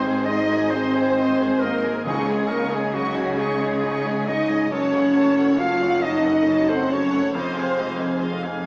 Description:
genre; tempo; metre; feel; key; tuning
cinematic, emotional film score for orchestra; 45 BPM (dotted quarters); 6/8; rubato; Db major; A4 = 443 Hz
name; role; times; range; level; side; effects
rich studio violin section; melody; 0.0-8.6 s; F5 to Db6; -36 LUFS; equal; none
large flute ensemble; second line; 0.0-8.2 s; Gb4 to F5; -33 LUFS; equal; none
rich studio violin section; second line; 0.0-8.2 s; Gb4 to F5; -33 LUFS; equal; none
warm clarinet; second line; 0.0-8.2 s; Gb4 to F5; -31 LUFS; equal; none
felt-muted upright piano; accompaniment; 0.0-8.7 s; Db2 to Ab4; -33 LUFS; equal; none
rich studio viola section; accompaniment; 0.0-8.7 s; Eb4 to F5; -35 LUFS; equal; none
mellow French horn section; sustained chords; 0.0-8.2 s; Gb3 to F4; -24 LUFS; equal; none
rich studio cello section; bass; 0.0-8.7 s; F2 to Db3; -33 LUFS; equal; none
warm studio double bass section; bass; 0.0-8.7 s; F1 to Db2; -35 LUFS; equal; none
timpani; percussion; 0.0-3.4 s; Ab2 to Db3; -38 LUFS; equal; none
room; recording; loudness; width
wet scoring stage reverb, RT60 1.9 s; small speaker sound; -21 LUFS; mono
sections
0.0-8.7 A section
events
none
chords
0.0 Ab; 2.1 Dbsus2; 4.7 Gbm; 7.3 Fm7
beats
0.73 | 2.06 3.39 | 4.72 6.04 | 7.35 8.65

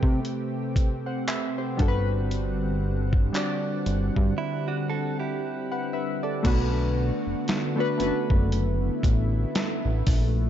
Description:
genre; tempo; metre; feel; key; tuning
contemporary R&B; 58 BPM; 4/4; swing 58% on 16ths; unclear; A4 = 439 Hz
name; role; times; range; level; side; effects
warm analog keys; accompaniment; 0.0-10.5 s; G3 to F#5; -30 LUFS; left 1 dB; chorus
lush unison pad; sustained chords; 0.0-10.5 s; C3 to F#5; -30 LUFS; equal; chorus
fat analog bass; bass; 0.0-10.5 s; F#1 to C3; -26 LUFS; equal; none
dusty soul sampler-style drum kit; drums; 0.0-10.3 s; crash cymbal, handclaps, hi-hat, kick drum, snare drum; -25 LUFS; equal; none
direct-recorded clean electric guitar; arpeggios; 4.4-6.4 s; D4 to A4; -33 LUFS; right 8 dB; spring reverb, digital delay
room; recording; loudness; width
digital ambience; dark, warm production, nothing above 7.6 kHz; -23 LUFS; side -10 dB against mid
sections
0.0-6.4 A section; 6.4-10.5 B section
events
break 4.4-6.4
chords
0.0 Am9/C; 1.8 Gmaj7; 6.4 Bm7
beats
0.24 1.28 | 2.31 3.35 4.38 5.41 | 6.45 7.48 8.52 9.55

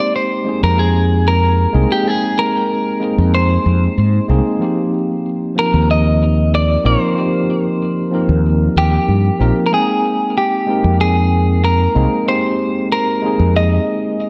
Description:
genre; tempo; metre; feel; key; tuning
sunset chillout; 94 BPM; 4/4; straight; unclear; A4 = 441 Hz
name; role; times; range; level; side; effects
clean electric guitar; melody; 0.0-14.3 s; G4 to Eb5; -20 LUFS; equal; digital delay
tine electric piano; accompaniment; 0.0-14.3 s; F3 to G5; -20 LUFS; equal; none
mellow fretless electric bass; bass; 0.6-13.8 s; Bb1 to Ab2; -16 LUFS; equal; none
room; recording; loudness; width
moderate lush hall reverb, RT60 1.9 s; dark, warm production; -15 LUFS; mono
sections
0.0-14.3 A section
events
none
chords
0.0 Fm11; 4.6 Eb69; 9.7 Fm11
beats
0.15 0.79 1.43 | 2.06 2.70 3.34 3.98 | 4.62 5.25 5.89 6.53 | 7.17 7.81 8.45 9.09 | 9.72 10.36 11.00 11.64 | 12.28 12.91 13.55 14.19

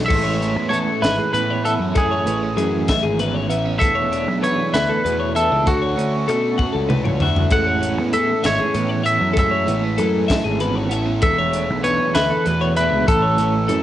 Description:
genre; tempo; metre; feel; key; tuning
math rock and midwest emo; 65 BPM (dotted quarters); 6/8; straight; A major; A4 = 440 Hz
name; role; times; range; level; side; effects
twelve-string electric guitar; accompaniment; 0.0-13.8 s; E2 to F#4; -25 LUFS; right 7 dB; tremolo, cassette tape
twelve-string electric guitar; arpeggios; 0.0-13.8 s; G#4 to F#5; -23 LUFS; left 7 dB; cassette tape, tape echo
fuzz picked electric bass; bass; 0.0-13.8 s; E1 to B2; -23 LUFS; equal; overdrive
twangy electric guitar; melody; 0.1-13.8 s; F#4 to F#5; -21 LUFS; right 2 dB; spring reverb, cassette tape
overdriven semi-hollow guitar; riff; 0.1-13.8 s; E3 to A4; -28 LUFS; equal; cassette tape
crisp fusion drum kit; drums; 0.1-13.8 s; crash cymbal, hi-hat, kick drum, snare drum, toms; -23 LUFS; equal; cassette tape
room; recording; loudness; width
light reverb; home recording on cassette, nothing above 10.6 kHz; -16 LUFS; side -12 dB against mid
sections
0.1-13.8 A section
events
drum fill 6.6-7.5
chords
0.1 Amaj7; 3.8 E7sus4; 5.7 Dmaj7; 7.5 Amaj7; 11.2 E7sus4; 13.1 A6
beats
| 0.10 1.03 | 1.96 2.88 | 3.81 4.74 | 5.67 6.59 | 7.52 8.45 | 9.37 10.29 | 11.22 12.14 | 13.07

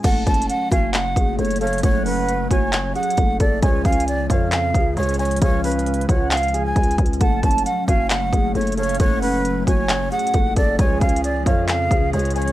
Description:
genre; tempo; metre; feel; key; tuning
hip hop, trap; 134 BPM; 4/4; half-time; F# harmonic minor; A4 = 436 Hz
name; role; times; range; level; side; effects
breathy jazz flute; melody; 0.0-12.5 s; B4 to A5; -23 LUFS; right 2 dB; none
warm velvety synth lead; second line; 0.0-12.5 s; C#5 to A5; -30 LUFS; right 2 dB; chorus, tape echo
felt-muted upright piano; accompaniment; 0.0-12.5 s; E#3 to G#5; -27 LUFS; equal; none
hollow soft pad; sustained chords; 0.0-12.5 s; C#3 to G#4; -28 LUFS; left 1 dB; ensemble chorus
growling 808-style bass; bass; 0.0-12.5 s; F#1 to E#2; -24 LUFS; equal; none
trap drum kit; drums; 0.0-12.5 s; crash cymbal, handclaps, hi-hat, kick drum; -20 LUFS; equal; none
room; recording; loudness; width
digital ambience; dry, gritty hardware recording; -17 LUFS; side -14 dB against mid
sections
0.0-12.5 A section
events
none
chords
0.0 F#madd9; 3.6 C#; 7.2 F#madd9; 10.8 C#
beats
| 0.04 0.49 0.94 1.39 | 1.83 2.28 2.73 3.18 | 3.62 4.07 4.52 4.97 | 5.42 5.86 6.31 6.76 | 7.21 7.66 8.10 8.55 | 9.00 9.45 9.89 10.34 | 10.79 11.24 11.69 12.13

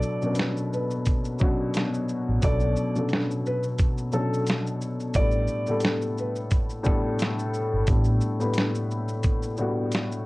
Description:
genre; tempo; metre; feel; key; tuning
lo-fi hip hop; 88 BPM; 4/4; swing 56% on 16ths; B minor; A4 = 439 Hz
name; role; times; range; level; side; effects
felt-muted upright piano; melody; 0.0-6.4 s; A4 to D5; -30 LUFS; equal; low-pass filter, plate reverb
dark upright piano; accompaniment; 0.0-10.3 s; A2 to B4; -26 LUFS; left 1 dB; cassette tape, low-pass filter
dusty soul sampler-style drum kit; drums; 0.0-10.3 s; hi-hat, kick drum, shaker, snare drum; -25 LUFS; equal; none
vintage muted fingered electric bass; bass; 2.3-8.2 s; G1 to B1; -24 LUFS; equal; none
room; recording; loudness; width
light reverb; cassette tape; -23 LUFS; side -21 dB against mid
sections
0.0-10.3 A section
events
none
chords
0.0 Bm9; 5.2 A9sus4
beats
0.38 1.06 1.74 | 2.42 3.11 3.79 4.47 | 5.15 5.83 6.52 7.20 | 7.88 8.56 9.24 9.93

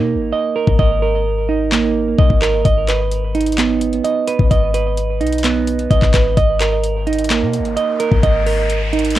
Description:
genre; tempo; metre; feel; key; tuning
hip hop, trap; 129 BPM; 4/4; half-time; G# minor; A4 = 440 Hz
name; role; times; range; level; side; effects
semi-hollow electric guitar; arpeggios; 0.0-9.2 s; A#3 to D#5; -16 LUFS; right 6 dB; low-pass filter, cassette tape, tape echo
clean 808-style bass; bass; 0.0-9.2 s; G#1 to B2; -18 LUFS; left 2 dB; none
trap drum kit; drums; 0.7-9.2 s; handclaps, hi-hat, kick drum; -18 LUFS; left 2 dB; none
riser; sound effects; 6.9-9.2 s; none; -28 LUFS; left 2 dB; none
room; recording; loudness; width
little or no reverb; home recording on cassette, tape stop; -14 LUFS; side -13 dB against mid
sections
0.0-9.2 A section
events
break 0.0-2.6; hi-hats muted 0.8-2.6; riser 6.9-9.2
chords
0.0 D#5/G#; 2.6 G#m; 6.4 D#5/G#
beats
0.33 | 0.79 1.25 1.72 2.19 | 2.65 3.12 3.58 4.04 | 4.51 4.98 5.44 5.91 | 6.37 6.84 7.30 7.77 | 8.23 8.70 9.16

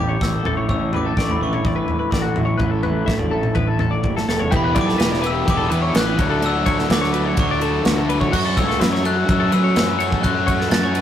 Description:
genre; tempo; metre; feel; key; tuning
math rock and midwest emo; 126 BPM; 4/4; straight; D major; A4 = 439 Hz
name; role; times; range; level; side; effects
glockenspiel with hard plastic mallets; melody; 0.0-11.0 s; B5 to A6; -25 LUFS; left 4 dB; none
electric guitar through a small old amp; accompaniment; 0.0-6.2 s; E2 to A4; -26 LUFS; right 1 dB; none
twelve-string electric guitar; arpeggios; 0.0-11.0 s; F#4 to E5; -25 LUFS; left 4 dB; none
fuzz fingered electric bass; bass; 0.0-11.0 s; E1 to F#3; -23 LUFS; equal; overdrive
modern studio drum kit; drums; 0.2-11.0 s; crash cymbal, kick drum, ride cymbal, snare drum, toms; -21 LUFS; equal; none
raw garage guitar; riff; 4.5-11.0 s; D3 to G4; -23 LUFS; right 1 dB; overdrive
room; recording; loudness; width
moderate stone room reverb, RT60 1.3 s; rough rehearsal-room recording, tube saturation; -16 LUFS; side -10 dB against mid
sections
0.0-4.5 A section; 4.5-11.0 B section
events
drum fill 4.0-4.5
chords
0.5 Dmaj7sus2/A; 4.5 Em7; 6.2 Dmaj7; 8.3 F#m7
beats
0.22 | 0.70 1.18 1.66 2.13 | 2.61 3.09 3.57 4.05 | 4.52 5.00 5.48 5.95 | 6.43 6.90 7.38 7.86 | 8.33 8.81 9.29 9.76 | 10.24 10.71

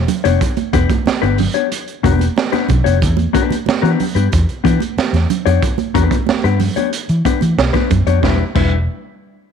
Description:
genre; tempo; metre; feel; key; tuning
funk; 92 BPM; 4/4; straight; E dorian; A4 = 443 Hz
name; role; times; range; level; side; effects
vintage muted fingered electric bass; bass; 0.0-8.9 s; E1 to E3; -15 LUFS; equal; none
crunchy breakbeat drum kit; drums; 0.1-8.7 s; crash cymbal, hi-hat, kick drum, snare drum; -18 LUFS; right 3 dB; none
congas; percussion; 0.1-8.9 s; none; -23 LUFS; right 13 dB; none
mellow electric guitar; accompaniment; 0.2-8.8 s; G3 to C#5; -18 LUFS; left 14 dB; none
room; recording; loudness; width
light reverb, studio reverb; 1960s-style stereo with parts hard left and right; -13 LUFS; side -7 dB against mid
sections
0.0-8.2 A section; 8.2-9.5 B section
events
none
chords
0.0 Em7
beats
| 0.41 1.06 1.71 2.36 | 3.02 3.67 4.32 4.97 | 5.62 6.28 6.93 7.58 | 8.23

